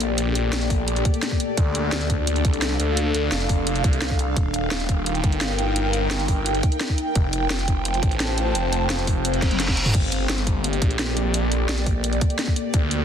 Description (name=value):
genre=dark technical drum and bass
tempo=172 BPM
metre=4/4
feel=straight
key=G minor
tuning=A4 = 441 Hz
part: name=deep dark ambient pad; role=sustained chords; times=0.0-13.0 s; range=Bb3 to G5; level=-29 LUFS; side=left 2 dB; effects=chorus, built-in reverb, sidechain pumping
part: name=phased detuned saw bass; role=bass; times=0.0-13.0 s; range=Eb1 to D2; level=-24 LUFS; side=equal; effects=phaser, tube saturation
part: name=drum and bass drum kit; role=drums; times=0.0-13.0 s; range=crash cymbal, hi-hat, snare drum, toms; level=-27 LUFS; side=equal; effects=none
part: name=airy breathy pad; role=texture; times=0.0-13.0 s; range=D4 to A5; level=-28 LUFS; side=equal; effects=chorus, sidechain pumping
part: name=electronic kick drum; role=drums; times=0.7-12.8 s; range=none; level=-22 LUFS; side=equal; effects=none
part: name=reverse cymbal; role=sound effects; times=9.4-9.9 s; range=none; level=-28 LUFS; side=equal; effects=none
room=light reverb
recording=dense, heavily limited modern master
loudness=-20 LUFS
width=side -8 dB against mid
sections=0.0-13.0 A section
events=reverse cymbal 9.4-9.9; drum fill 9.4-9.9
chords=0.0 Gmadd9; 1.6 Dm; 4.4 Eb; 7.2 F; 9.9 Gmadd9